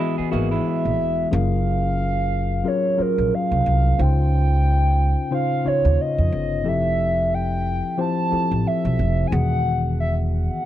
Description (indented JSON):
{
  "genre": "R&B",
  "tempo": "90 BPM",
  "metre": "4/4",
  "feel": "swing 57% on 16ths",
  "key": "unclear",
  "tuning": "A4 = 440 Hz",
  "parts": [
    { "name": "electric guitar through a small old amp", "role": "second line", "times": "0.0-1.3 s", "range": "G#3 to G#4", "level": "-27 LUFS", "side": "right 9 dB", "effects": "none" },
    { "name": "tine electric piano", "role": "accompaniment", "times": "0.0-10.7 s", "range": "Db3 to E5", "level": "-24 LUFS", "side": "left 5 dB", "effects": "none" },
    { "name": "upright bass", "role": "bass", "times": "0.2-10.5 s", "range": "E1 to F2", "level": "-21 LUFS", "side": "right 1 dB", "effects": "none" },
    { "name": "hollow clarinet-like synth lead", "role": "melody", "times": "0.7-10.7 s", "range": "Bb4 to A5", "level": "-24 LUFS", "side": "right 2 dB", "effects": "chorus, phaser" }
  ],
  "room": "digital ambience",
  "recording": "dry, close 1970s-style studio recording",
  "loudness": "-18 LUFS",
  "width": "side -12 dB against mid",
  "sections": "0.0-1.3 A section; 1.3-10.7 A section",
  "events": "none",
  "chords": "0.0 Emaj9; 1.3 Gbmaj9; 4.0 Dbmaj9; 6.6 Fmaj9; 9.3 Emaj9"
}